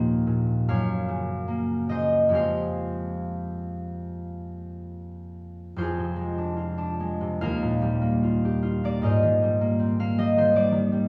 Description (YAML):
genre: classical, solo harp piece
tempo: 67-80 BPM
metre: 4/4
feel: rubato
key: F minor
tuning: A4 = 439 Hz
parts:
  - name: concert harp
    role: solo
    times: 0.0-11.1 s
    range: Eb2 to F5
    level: -26 LUFS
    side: equal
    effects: none
room: wet stone room reverb, RT60 1.3 s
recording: heard from further back in the room, small room ambience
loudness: -25 LUFS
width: mono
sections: 0.0-5.8 A section; 5.8-11.1 A section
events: none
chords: 0.0 Eb69; 0.7 Gbmaj7; 2.3 Fmadd9; 5.8 Fm6; 7.4 Ebadd9; 9.0 Abmaj9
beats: 0.68 1.49 | 2.34 3.21 4.07 4.93 | 5.77 6.58 7.42 8.21 | 9.01 9.77 10.52